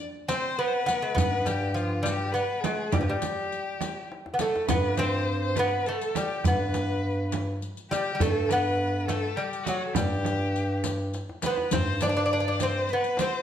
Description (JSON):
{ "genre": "Persian modal ensemble", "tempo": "68 BPM (dotted quarters)", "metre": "6/8", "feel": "straight", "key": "G dastgah homayun, G dastgah mahur from 4.7 s", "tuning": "A4 = 440 Hz", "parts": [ { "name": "riq", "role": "percussion", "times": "0.0-13.3 s", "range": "none", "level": "-37 LUFS", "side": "left 6 dB", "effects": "none" }, { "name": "tombak", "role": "percussion", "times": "0.0-13.3 s", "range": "none", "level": "-33 LUFS", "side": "left 2 dB", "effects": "none" }, { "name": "lute", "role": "melody", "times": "0.3-13.4 s", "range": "F3 to D4", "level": "-28 LUFS", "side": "equal", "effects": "none" }, { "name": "rich violin", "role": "second line", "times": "0.3-13.4 s", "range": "F4 to D5", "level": "-32 LUFS", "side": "left 3 dB", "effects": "none" }, { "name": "frame drum", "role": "percussion", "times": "0.3-13.3 s", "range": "none", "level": "-33 LUFS", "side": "right 7 dB", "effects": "none" }, { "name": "breathy bass clarinet", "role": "bass", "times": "1.2-13.1 s", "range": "G2", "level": "-29 LUFS", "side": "equal", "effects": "none" } ], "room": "moderate recital hall reverb, RT60 1.4 s", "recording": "none", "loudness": "-24 LUFS", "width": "side -9 dB against mid", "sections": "0.0-4.7 A section; 4.7-13.4 B section", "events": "drum fill 4.1-4.7, 11.1-11.7", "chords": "none", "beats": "0.29 | 1.17 2.05 | 2.93 3.81 | 4.69 5.57 | 6.45 7.32 | 8.20 9.08 | 9.96 10.84 | 11.72 12.60" }